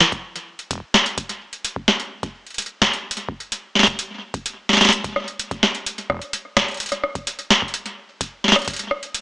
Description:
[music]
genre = IDM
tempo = 128 BPM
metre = 4/4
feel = straight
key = none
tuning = none
[part]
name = booming analog drum machine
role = drums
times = 0.0-9.2 s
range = hi-hat, rim click, snare drum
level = -17 LUFS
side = equal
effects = none
[part]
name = electronic kick drum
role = drums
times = 0.1-8.8 s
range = none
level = -32 LUFS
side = equal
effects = none
[sound]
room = light reverb, digital ambience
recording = small speaker sound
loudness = -18 LUFS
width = side -25 dB against mid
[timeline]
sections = 0.0-9.2 A section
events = none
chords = none

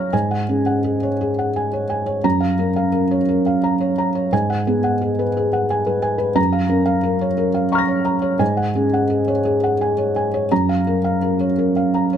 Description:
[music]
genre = neoclassical minimalist piano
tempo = 58 BPM (dotted quarters)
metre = 6/8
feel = rubato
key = F# major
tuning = A4 = 438 Hz
[part]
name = felt-muted upright piano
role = solo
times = 0.0-12.2 s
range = F#2 to A#6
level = -16 LUFS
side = equal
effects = none
[sound]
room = little or no reverb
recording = close, detailed microphones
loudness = -16 LUFS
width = side -9 dB against mid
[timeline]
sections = 0.0-12.2 A section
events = none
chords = 0.1 C#sus4/G#; 2.2 F#maj7; 4.3 G#m7; 6.4 F#maj7; 8.4 C#sus4/G#; 10.5 F#maj7

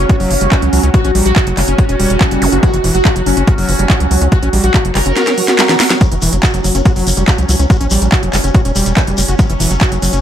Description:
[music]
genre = psychedelic trance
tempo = 142 BPM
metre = 4/4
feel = straight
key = F# major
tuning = A4 = 441 Hz
[part]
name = overdriven synth lead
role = melody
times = 0.0-5.9 s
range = C#4 to A#4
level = -18 LUFS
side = equal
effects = phaser, sidechain pumping, dub echo
[part]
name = bubbling stepped-filter texture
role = sustained chords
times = 0.0-10.2 s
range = F#3 to F#4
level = -21 LUFS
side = equal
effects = chorus, built-in reverb, sidechain pumping
[part]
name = overdriven acid bass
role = riff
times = 0.0-10.2 s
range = E3 to F#4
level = -19 LUFS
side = equal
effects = distortion, auto-pan, sidechain pumping, dub echo
[part]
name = tight sequencer bass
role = bass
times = 0.0-10.2 s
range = E1 to C#2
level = -15 LUFS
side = equal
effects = none
[part]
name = electronic kick drum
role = drums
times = 0.1-9.9 s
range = none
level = -12 LUFS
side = equal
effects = none
[part]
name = techno drum kit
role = drums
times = 0.1-10.2 s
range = handclaps, hi-hat, snare drum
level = -17 LUFS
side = right 1 dB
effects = none
[part]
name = zap and swell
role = sound effects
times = 2.4-2.5, 5.3-6.0 s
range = none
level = -22 LUFS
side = equal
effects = none
[part]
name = shekere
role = percussion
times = 6.0-10.2 s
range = none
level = -24 LUFS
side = left 4 dB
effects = none
[part]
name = vowel-sweep wobble bass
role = second line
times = 6.7-8.6 s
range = E3 to A#3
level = -34 LUFS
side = right 1 dB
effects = none
[sound]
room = digital ambience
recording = none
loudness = -10 LUFS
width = side -10 dB against mid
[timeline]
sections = 0.0-10.2 A section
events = drum fill 5.2-6.0; swell 5.3-6.0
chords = 0.0 F#5

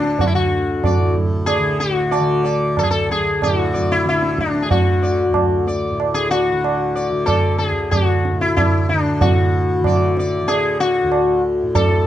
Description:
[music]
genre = indian classical, Hindustani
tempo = 93 BPM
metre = 7/4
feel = straight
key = D raga yaman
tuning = A4 = 439 Hz
[part]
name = sitar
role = melody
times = 0.0-12.1 s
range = D4 to D5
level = -18 LUFS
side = left 3 dB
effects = none
[part]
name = tanpura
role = drone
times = 0.0-12.1 s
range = D2 to D3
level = -24 LUFS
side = right 1 dB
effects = none
[part]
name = tabla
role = percussion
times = 0.0-12.0 s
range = none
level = -19 LUFS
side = right 3 dB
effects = none
[sound]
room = light reverb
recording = dark, warm production, nothing above 10.7 kHz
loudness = -15 LUFS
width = side -12 dB against mid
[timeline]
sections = 0.0-9.2 A section; 9.2-12.1 B section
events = none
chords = none

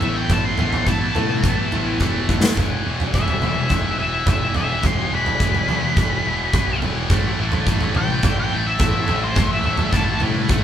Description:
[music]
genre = quiet-loud alternative rock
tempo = 106 BPM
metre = 4/4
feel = straight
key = unclear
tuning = A4 = 439 Hz
[part]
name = octave-fuzz lead guitar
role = melody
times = 0.0-10.2 s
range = C5 to C6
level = -24 LUFS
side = left 2 dB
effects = distortion
[part]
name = picked steel-string acoustic guitar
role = arpeggios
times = 0.0-2.6 s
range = A3 to A4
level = -28 LUFS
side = equal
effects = none
[part]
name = scooped high-gain guitar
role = riff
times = 0.0-10.6 s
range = E2 to A3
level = -24 LUFS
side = equal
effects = distortion
[part]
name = growling picked electric bass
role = bass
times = 0.0-10.6 s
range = E1 to A2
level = -26 LUFS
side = equal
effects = overdrive
[part]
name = big rock drum kit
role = drums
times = 0.0-10.6 s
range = kick drum, snare drum, toms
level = -20 LUFS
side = equal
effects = none
[sound]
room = moderate large studio reverb, RT60 0.9 s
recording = band playing live in one room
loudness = -17 LUFS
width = side -10 dB against mid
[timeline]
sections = 0.0-10.6 A section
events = lead electric guitar solo 0.0-10.6; drum fill 2.0-2.6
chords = 0.0 Asus2; 2.6 E5; 7.1 A5

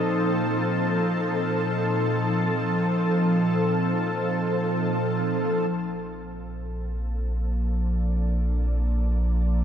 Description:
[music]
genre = ambient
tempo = free time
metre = none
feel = none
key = Bb major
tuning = A4 = 440 Hz
[part]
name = ethereal airy pad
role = sustained chords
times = 0.0-9.6 s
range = Bb2 to D5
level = -24 LUFS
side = equal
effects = ensemble chorus, built-in reverb
[part]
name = barky tine electric piano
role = arpeggios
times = 0.0-6.5 s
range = none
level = barely audible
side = none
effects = none
[part]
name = warm sub bass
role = bass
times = 5.7-9.6 s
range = Bb1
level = -24 LUFS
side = equal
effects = none
[sound]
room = wet lush hall reverb, RT60 3.0 s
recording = dreamy mix soaked in reverb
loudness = -22 LUFS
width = side -9 dB against mid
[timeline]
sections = 0.0-5.7 A section; 5.7-9.6 B section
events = fade-in on ambient pad 5.7-9.6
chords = 0.0 F7/Bb; 5.7 Bbmaj7

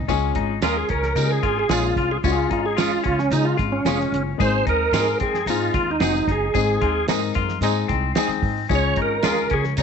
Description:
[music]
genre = uptempo 1960s-style soul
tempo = 112 BPM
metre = 4/4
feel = straight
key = Db major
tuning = A4 = 440 Hz
[part]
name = semi-hollow electric guitar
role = riff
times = 0.0-9.8 s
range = C4 to Ab4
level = -27 LUFS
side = left 13 dB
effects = none
[part]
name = upright bass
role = bass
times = 0.0-9.8 s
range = F1 to Db3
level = -25 LUFS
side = right 1 dB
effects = none
[part]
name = dark upright piano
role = accompaniment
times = 0.1-9.8 s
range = Ab3 to Bb4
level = -26 LUFS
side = left 13 dB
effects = none
[part]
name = cloth-damped thuddy drum kit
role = drums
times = 0.1-9.8 s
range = hi-hat, kick drum, snare drum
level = -27 LUFS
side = right 3 dB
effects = none
[part]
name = tambourine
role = percussion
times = 0.1-9.8 s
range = none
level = -34 LUFS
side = right 16 dB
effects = none
[part]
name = bright tonewheel organ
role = melody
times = 0.6-9.8 s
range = Db4 to Db5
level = -22 LUFS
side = right 3 dB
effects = chorus vibrato, slow rotary speaker
[part]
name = electric guitar through a small old amp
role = stabs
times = 0.6-9.3 s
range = Ab3 to Ab4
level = -29 LUFS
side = right 14 dB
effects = tremolo
[part]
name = bright saxophone section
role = second line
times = 6.8-7.8 s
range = Ab3 to Eb4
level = -31 LUFS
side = right 14 dB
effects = none
[sound]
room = light reverb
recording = 1960s-style stereo with parts hard left and right, nothing above 8.0 kHz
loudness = -18 LUFS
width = side -6 dB against mid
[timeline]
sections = 0.1-9.8 A section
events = tonewheel organ solo 0.1-9.8; band accent 6.6-8.7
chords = 0.1 Db; 4.4 Ab; 8.7 Db

